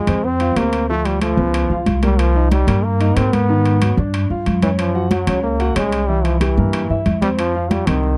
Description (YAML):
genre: Afro-Cuban jazz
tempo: 185 BPM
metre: 4/4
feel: straight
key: F minor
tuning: A4 = 436 Hz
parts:
  - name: brilliant trombone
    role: melody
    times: 0.0-8.2 s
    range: Eb3 to C4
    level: -23 LUFS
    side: equal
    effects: none
  - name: warm baby grand piano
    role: accompaniment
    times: 0.0-8.1 s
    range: Eb3 to Gb5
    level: -25 LUFS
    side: equal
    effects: none
  - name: upright bass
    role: bass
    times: 0.1-8.2 s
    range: C2 to Ab2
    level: -20 LUFS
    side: equal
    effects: none
  - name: timbales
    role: percussion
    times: 0.1-8.0 s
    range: none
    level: -30 LUFS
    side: equal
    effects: none
  - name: congas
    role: percussion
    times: 0.2-8.2 s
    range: none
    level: -24 LUFS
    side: equal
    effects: none
room: little or no reverb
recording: dry, close 1970s-style studio recording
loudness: -17 LUFS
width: mono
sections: 0.0-8.2 A section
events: none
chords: 0.0 Fm; 0.9 Dm; 1.5 Db6; 2.2 Cm7; 3.5 Abm7; 4.1 G5; 4.8 Gbmaj7; 6.1 C7; 7.4 F5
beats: 0.24 0.57 | 0.89 1.22 1.54 1.87 | 2.19 2.52 2.84 3.17 | 3.49 3.82 4.14 4.47 | 4.79 5.12 5.44 5.77 | 6.09 6.42 6.74 7.06 | 7.39 7.71 8.04